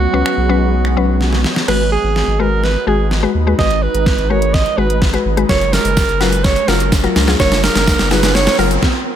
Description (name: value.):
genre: dance-pop.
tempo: 126 BPM.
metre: 4/4.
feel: straight.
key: unclear.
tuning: A4 = 440 Hz.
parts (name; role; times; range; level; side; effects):
bright alto saxophone; melody; 0.0-8.7 s; F#4 to D#5; -18 LUFS; right 5 dB; ping-pong delay.
shimmering ambient pad; sustained chords; 0.0-8.8 s; C#3 to B4; -24 LUFS; right 1 dB; chorus, built-in reverb, sidechain pumping.
saturated sub bass; bass; 0.0-8.8 s; F#1 to D#2; -17 LUFS; equal; sidechain pumping.
mallet-like synth pluck; accompaniment; 0.1-8.8 s; F#3 to B4; -19 LUFS; left 6 dB; chorus, sidechain pumping.
pop drum kit; drums; 0.3-8.9 s; crash cymbal, finger snaps, hi-hat, kick drum, shaker, snare drum; -17 LUFS; equal; overdrive.
riser; sound effects; 4.7-8.8 s; none; -25 LUFS; right 1 dB; none.
tambourine; percussion; 5.5-8.7 s; none; -32 LUFS; right 12 dB; none.
room: digital ambience.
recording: none.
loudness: -12 LUFS.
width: side -10 dB against mid.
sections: 0.0-1.7 A section; 1.7-9.2 B section.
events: drum fill 1.2-1.7, 1.7-8.8; build-up 1.7-9.2; riser 4.7-9.2; stop 8.8-9.2.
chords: 0.0 C#7sus4; 1.7 G#m7; 5.5 F#maj7.